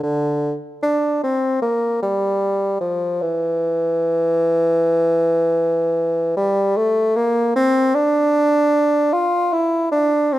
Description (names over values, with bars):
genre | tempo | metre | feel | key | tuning
classical, baroque-style fantasia for unaccompanied bassoon | 76 BPM | 4/4 | rubato | unclear | A4 = 442 Hz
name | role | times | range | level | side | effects
mellow bassoon | solo | 0.0-10.4 s | D3 to F4 | -16 LUFS | equal | none
room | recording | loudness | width
moderate recital hall reverb, RT60 1.6 s | close, detailed microphones | -16 LUFS | side -15 dB against mid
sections
0.0-10.4 A section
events
none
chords
none